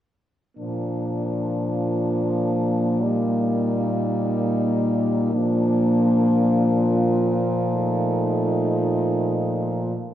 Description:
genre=classical, lyrical piece for horn quartet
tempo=50 BPM (dotted quarters)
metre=6/8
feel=uneven beats, rubato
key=Bb major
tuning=A4 = 440 Hz
part: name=warm French horn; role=melody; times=0.6-9.9 s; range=D4 to Eb4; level=-28 LUFS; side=left 4 dB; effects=none
part: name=dark French horn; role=second line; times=0.6-9.9 s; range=A3 to Bb3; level=-24 LUFS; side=right 1 dB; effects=none
part: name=mellow French horn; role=accompaniment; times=0.6-9.9 s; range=F3 to G3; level=-26 LUFS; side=equal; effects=none
part: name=mellow French horn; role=bass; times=0.6-9.9 s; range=Bb2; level=-25 LUFS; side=right 1 dB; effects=none
room=wet concert hall reverb, RT60 1.7 s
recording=heard from further back in the room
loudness=-19 LUFS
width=side -11 dB against mid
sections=0.6-10.1 A section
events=none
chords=0.6 Bb; 3.0 Eb/Bb; 5.3 Bb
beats=| 0.58 1.82 | 3.02 4.21 | 5.35 6.53 | 7.74 8.99

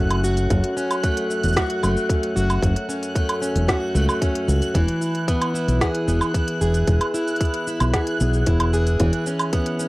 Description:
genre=folktronica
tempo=113 BPM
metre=4/4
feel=straight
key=F# minor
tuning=A4 = 439 Hz
part: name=picked plugged-in steel-string acoustic guitar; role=arpeggios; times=0.0-9.9 s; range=F#2 to G#4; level=-23 LUFS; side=equal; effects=cassette tape, analog delay
part: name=fingered electric bass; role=bass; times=0.0-9.1 s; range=E1 to C#2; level=-20 LUFS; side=equal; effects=none
part: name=backwards swelling texture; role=texture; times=0.0-9.9 s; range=F#6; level=-31 LUFS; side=right 1 dB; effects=built-in reverb, cassette tape
part: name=organic electronic drum kit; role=drums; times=0.1-9.9 s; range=hi-hat, shaker, snare drum, woodblock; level=-26 LUFS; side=right 1 dB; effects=cassette tape
part: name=electronic kick drum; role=drums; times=0.5-9.6 s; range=none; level=-22 LUFS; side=equal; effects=cassette tape
room=little or no reverb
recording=home recording on cassette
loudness=-18 LUFS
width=side -19 dB against mid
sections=0.0-9.9 A section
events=none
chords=0.0 F#m; 4.8 E; 9.0 C#m7/E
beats=| 0.50 1.03 1.56 2.10 | 2.63 3.16 3.69 4.22 | 4.75 5.28 5.81 6.34 | 6.88 7.41 7.94 8.47 | 9.00 9.53

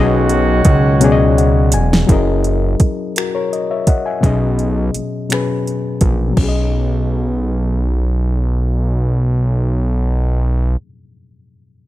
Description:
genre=slow six-eight R&B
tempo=56 BPM (dotted quarters)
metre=6/8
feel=straight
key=B major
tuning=A4 = 440 Hz
part: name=overdriven reed electric piano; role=accompaniment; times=0.0-11.9 s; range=B2 to G#5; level=-18 LUFS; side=left 4 dB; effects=none
part: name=warm horn section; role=stabs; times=0.0-1.7 s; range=D#3 to F#4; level=-20 LUFS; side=right 3 dB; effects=tape echo
part: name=fat analog bass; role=bass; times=0.0-10.8 s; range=E1 to C#2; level=-15 LUFS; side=right 1 dB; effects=none
part: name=smooth R&B drum kit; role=drums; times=0.3-6.5 s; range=crash cymbal, finger snaps, hi-hat, kick drum, snare drum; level=-15 LUFS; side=right 1 dB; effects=overdrive
room=digital ambience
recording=none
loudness=-13 LUFS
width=side -15 dB against mid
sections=0.0-2.1 A section; 2.1-6.4 B section; 6.4-10.7 C section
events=drum fill 1.0-2.1; reed electric piano fill 1.0-2.1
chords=0.0 B69; 2.1 F#13; 4.2 B69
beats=1.01 | 2.08 3.15 | 4.23 5.30 | 6.37 7.44 | 8.51 9.58

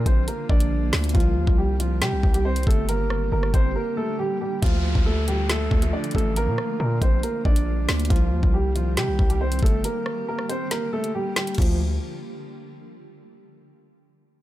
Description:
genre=hip hop, drill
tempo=138 BPM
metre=4/4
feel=half-time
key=D phrygian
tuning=A4 = 437 Hz
part: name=granular cloud pad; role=sustained chords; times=0.0-11.8 s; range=D3 to G4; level=-33 LUFS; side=equal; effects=built-in reverb
part: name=distorted 808-style bass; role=bass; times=0.0-12.0 s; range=G1 to C3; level=-24 LUFS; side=equal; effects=distortion
part: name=dark baby grand piano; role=melody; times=0.1-11.8 s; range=F3 to D5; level=-27 LUFS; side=right 1 dB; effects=ping-pong delay
part: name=drill drum kit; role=drums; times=0.1-11.7 s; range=crash cymbal, hi-hat, kick drum, rim click, snare drum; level=-22 LUFS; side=equal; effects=none
part: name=downlifter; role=sound effects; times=4.6-8.1 s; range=none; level=-37 LUFS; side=equal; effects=none
room=little or no reverb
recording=none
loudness=-20 LUFS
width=side -14 dB against mid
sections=0.0-4.6 A section; 4.6-11.6 B section; 11.6-13.3 C section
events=break 3.8-4.6, 9.8-11.6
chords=0.0 Bb6; 1.1 Cm; 2.9 Gm; 4.6 Dm; 6.4 Bb6; 8.1 Cm; 9.8 Gm; 11.6 Dm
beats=0.28 0.71 | 1.15 1.58 2.02 2.45 | 2.89 3.32 3.76 4.19 | 4.62 5.06 5.50 5.93 | 6.36 6.80 7.23 7.67 | 8.10 8.54 8.97 9.41 | 9.84 10.28 10.71 11.15 | 11.58

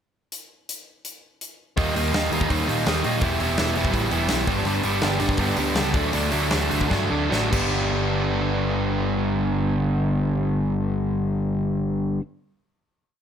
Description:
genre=punk rock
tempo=140-166 BPM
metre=4/4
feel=straight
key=G major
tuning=A4 = 440 Hz
part: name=big rock drum kit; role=drums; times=0.3-7.6 s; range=crash cymbal, hi-hat, kick drum, snare drum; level=-27 LUFS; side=equal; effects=none
part: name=overdriven electric guitar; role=riff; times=1.8-12.2 s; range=G2 to E4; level=-22 LUFS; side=equal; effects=none
part: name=overdriven picked electric bass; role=bass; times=1.8-12.2 s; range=E1 to Bb2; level=-28 LUFS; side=equal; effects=none
room=light reverb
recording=none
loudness=-20 LUFS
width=side -8 dB against mid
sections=0.3-1.8 pickup bar; 1.8-7.7 verse; 7.7-11.1 final hit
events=slowing down 4.7-7.7; drum fill 6.9-7.7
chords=0.3 N.C.; 1.8 Eb; 3.2 Em; 4.5 G; 5.9 D; 7.5 G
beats=| 0.32 0.69 1.05 1.41 | 1.77 2.13 2.49 2.86 | 3.22 3.58 3.94 4.30 | 4.66 5.02 5.38 5.75 | 6.13 6.51 6.91 7.31 | 7.73 8.16 8.58 9.01 | 9.44 9.86 10.29 10.72

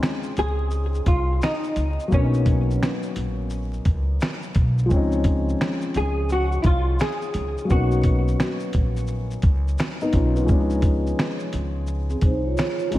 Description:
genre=lo-fi hip hop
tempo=86 BPM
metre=4/4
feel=swing 63% on 16ths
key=Db major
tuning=A4 = 439 Hz
part: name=felt-muted upright piano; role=accompaniment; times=0.0-13.0 s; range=F3 to F4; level=-27 LUFS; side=left 2 dB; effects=cassette tape, low-pass filter
part: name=dusty soul sampler-style drum kit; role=drums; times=0.0-13.0 s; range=finger snaps, hi-hat, kick drum, shaker, snare drum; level=-22 LUFS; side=equal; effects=none
part: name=hollow-body jazz guitar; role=melody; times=0.4-8.7 s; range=Db4 to Ab4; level=-27 LUFS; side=equal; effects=ensemble chorus, low-pass filter, ping-pong delay
part: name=upright bass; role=bass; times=0.4-13.0 s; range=Bb1 to Db2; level=-23 LUFS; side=equal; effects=none
part: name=vibraphone with soft mallets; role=second line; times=12.1-13.0 s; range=C4 to Db5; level=-25 LUFS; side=right 3 dB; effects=low-pass filter, ping-pong delay
room=light reverb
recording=vinyl crackle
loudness=-20 LUFS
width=side -15 dB against mid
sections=0.0-13.0 A section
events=none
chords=0.0 Dbmaj9; 2.1 Cbmaj9; 4.9 Dbmaj9; 7.7 Cbmaj9; 10.5 Dbmaj9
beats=0.03 0.72 1.42 | 2.12 2.81 3.51 4.21 | 4.91 5.61 6.30 7.00 | 7.70 8.40 9.09 9.79 | 10.49 11.19 11.88 12.58

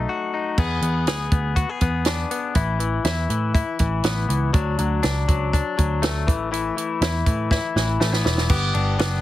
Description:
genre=jangly indie pop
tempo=121 BPM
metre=4/4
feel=straight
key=unclear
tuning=A4 = 438 Hz
part: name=direct-recorded clean electric guitar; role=arpeggios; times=0.0-9.2 s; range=E3 to G#4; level=-24 LUFS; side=left 6 dB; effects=spring reverb
part: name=vintage muted picked electric bass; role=bass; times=0.0-9.2 s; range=E1 to A2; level=-23 LUFS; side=right 1 dB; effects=none
part: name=compact cocktail drum kit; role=drums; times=0.6-9.1 s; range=crash cymbal, hi-hat, kick drum, ride cymbal, snare drum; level=-22 LUFS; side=right 1 dB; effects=none
room=little or no reverb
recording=heavily compressed radio sound, multiband compression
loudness=-19 LUFS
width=side -14 dB against mid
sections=0.6-8.5 A section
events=break 0.1-0.6; drum fill 7.5-8.5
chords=0.0 B7 (rootless); 0.6 E7; 2.6 Asus2; 4.5 D; 6.3 Asus2; 8.5 G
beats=0.08 | 0.58 1.07 1.57 2.07 | 2.56 3.06 3.55 4.05 | 4.54 5.04 5.53 6.03 | 6.52 7.02 7.51 8.01 | 8.50 8.99

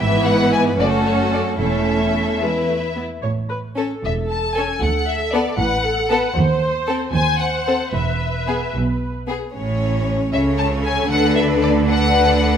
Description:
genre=quick classical-period movement for string orchestra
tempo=76 BPM (dotted quarters)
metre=6/8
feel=rubato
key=A major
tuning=A4 = 440 Hz
part: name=rich studio violin section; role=melody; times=0.0-12.6 s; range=C#5 to A5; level=-22 LUFS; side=left 4 dB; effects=none
part: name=clear studio violin section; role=second line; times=0.0-12.6 s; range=B3 to C#5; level=-21 LUFS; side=left 3 dB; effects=none
part: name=warm studio viola section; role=accompaniment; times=0.0-12.6 s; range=E3 to C#5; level=-23 LUFS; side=right 2 dB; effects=none
part: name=bright studio cello section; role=bass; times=0.0-12.6 s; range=D2 to D3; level=-24 LUFS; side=right 3 dB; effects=none
part: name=clear studio double bass section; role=bass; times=0.0-12.6 s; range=E1 to D#2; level=-23 LUFS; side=right 3 dB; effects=none
room=moderate scoring stage reverb, RT60 1.7 s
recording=close, detailed microphones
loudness=-16 LUFS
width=side -8 dB against mid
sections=0.0-3.2 A section; 3.2-12.6 B section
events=none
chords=0.0 E/G#; 0.8 F#m; 1.6 A/E; 2.4 E5; 4.8 D6; 6.4 D#m6; 7.9 E5; 9.6 A; 11.1 D6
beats=| 0.01 0.80 | 1.60 2.42 | 3.24 4.04 | 4.83 5.60 | 6.37 7.14 | 7.94 8.75 | 9.55 10.34 | 11.11 11.88

